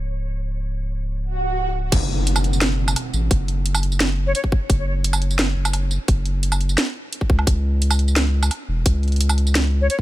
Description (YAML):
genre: half-time drum and bass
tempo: 173 BPM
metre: 4/4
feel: half-time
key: unclear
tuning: A4 = 440 Hz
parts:
  - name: saturated sub bass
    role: bass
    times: 0.0-9.9 s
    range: C#1 to C#2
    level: -20 LUFS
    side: equal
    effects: none
  - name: swell and impact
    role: sound effects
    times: 1.3-3.3 s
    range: none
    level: -27 LUFS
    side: right 1 dB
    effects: none
  - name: drum and bass drum kit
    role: drums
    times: 1.9-10.0 s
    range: crash cymbal, hi-hat, snare drum, tambourine, woodblock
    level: -23 LUFS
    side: right 1 dB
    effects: small room ambience
  - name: electronic kick drum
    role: drums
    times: 1.9-10.0 s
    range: none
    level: -18 LUFS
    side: equal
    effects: small room ambience
  - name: bright reedy jazz flute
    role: melody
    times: 4.3-4.4, 9.8-10.0 s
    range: C#5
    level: -28 LUFS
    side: left 3 dB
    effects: vintage 12-bit sampler grit, digital delay
room: little or no reverb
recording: none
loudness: -18 LUFS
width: side -16 dB against mid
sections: 0.0-1.9 A section; 1.9-10.0 B section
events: swell 1.3-1.9; drop 1.9-10.0; impact 1.9-3.3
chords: none